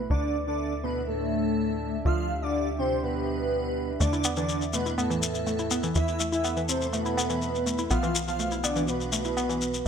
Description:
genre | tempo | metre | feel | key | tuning
melodic techno | 123 BPM | 4/4 | straight | unclear | A4 = 440 Hz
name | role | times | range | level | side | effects
dark analog pad | sustained chords | 0.0-9.9 s | B3 to E5 | -35 LUFS | right 1 dB | chorus, vintage 12-bit sampler grit
tight sequencer bass | bass | 0.0-9.9 s | B1 to E2 | -32 LUFS | equal | none
fat analog lead | melody | 0.1-9.9 s | A3 to F4 | -30 LUFS | equal | phaser, lush chorus, digital delay
airy dreamy lead | second line | 0.1-9.9 s | A4 to F5 | -33 LUFS | equal | chorus, digital delay
woody wave-folded pluck | arpeggios | 4.0-9.9 s | E3 to E4 | -30 LUFS | right 1 dB | chorus, digital delay
shekere | percussion | 4.0-9.8 s | none | -32 LUFS | left 6 dB | none
room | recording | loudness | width
moderate plate reverb, RT60 1.7 s, digital ambience | bright 1980s-style digital production | -25 LUFS | side -7 dB against mid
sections
0.0-9.9 A section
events
none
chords
0.1 D5; 4.0 E5; 7.9 B5

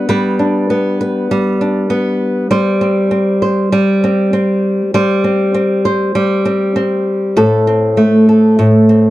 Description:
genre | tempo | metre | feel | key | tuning
pop | 99 BPM | 4/4 | straight | unclear | A4 = 440 Hz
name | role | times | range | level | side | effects
flamenco guitar | solo | 0.0-9.1 s | A2 to C5 | -11 LUFS | equal | none
room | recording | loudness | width
small room ambience | dry, close 1970s-style studio recording | -11 LUFS | side -16 dB against mid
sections
0.0-9.1 A section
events
none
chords
0.0 G; 2.5 C5/G; 7.4 Am

